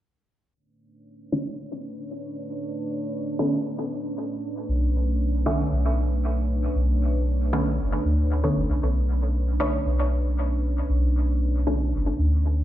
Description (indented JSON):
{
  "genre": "dub techno",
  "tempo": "116 BPM",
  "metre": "4/4",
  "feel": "straight",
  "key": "B minor",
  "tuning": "A4 = 445 Hz",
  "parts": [
    { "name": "deep dark ambient pad", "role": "sustained chords", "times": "1.3-12.6 s", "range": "A3 to C#5", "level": "-31 LUFS", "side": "right 1 dB", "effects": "chorus, built-in reverb" },
    { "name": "filtered dub chord stab", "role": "stabs", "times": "1.3-11.8 s", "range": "D3 to C#4", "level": "-28 LUFS", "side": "equal", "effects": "chorus, phaser, dub echo" },
    { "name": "soft dub sub bass", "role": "bass", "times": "4.7-12.6 s", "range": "F#1 to D2", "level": "-22 LUFS", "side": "equal", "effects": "none" }
  ],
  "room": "light reverb, digital ambience",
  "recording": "played on a big sound system in a bare room, large studio reverb, low-pass filter",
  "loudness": "-22 LUFS",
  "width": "side -13 dB against mid",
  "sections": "0.5-8.8 A section; 8.8-12.6 B section",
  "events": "filter sweep on synth stab 0.5-8.8; filter sweep 0.5-8.8",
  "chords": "0.5 Bm9",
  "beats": "| 0.55 1.06 1.58 2.10 | 2.62 3.13 3.65 4.17 | 4.69 5.20 5.72 6.24 | 6.75 7.27 7.79 8.31 | 8.82 9.34 9.86 10.38 | 10.89 11.41 11.93 12.45"
}